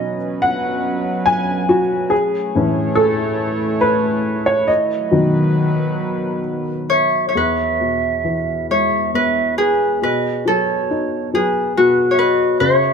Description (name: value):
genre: celtic folk, Celtic slow air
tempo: 69 BPM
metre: 3/4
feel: uneven beats, rubato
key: unclear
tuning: A4 = 436 Hz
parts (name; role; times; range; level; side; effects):
- warm upright piano; accompaniment; 0.0-12.9 s; E2 to G#5; -18 LUFS; left 2 dB; none
- warbly tape-like pad; sustained chords; 0.0-7.3 s; D#3 to C#5; -23 LUFS; right 2 dB; chorus, built-in reverb
- Celtic harp; melody; 6.9-12.9 s; F#4 to C#5; -16 LUFS; left 2 dB; none
- baroque flute; second line; 6.9-12.9 s; B4 to E5; -22 LUFS; right 10 dB; none
room: light reverb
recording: close, detailed microphones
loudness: -15 LUFS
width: side -6 dB against mid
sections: 0.0-7.4 A section; 7.4-12.9 B section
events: upright piano solo 0.0-7.4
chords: 0.0 B; 2.1 A; 4.7 B; 7.4 E; 10.0 Badd9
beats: 0.43 1.27 | 2.12 2.96 3.82 | 4.69 5.55 6.44 | 7.36 8.26 9.14 | 10.03 10.91 11.76 | 12.60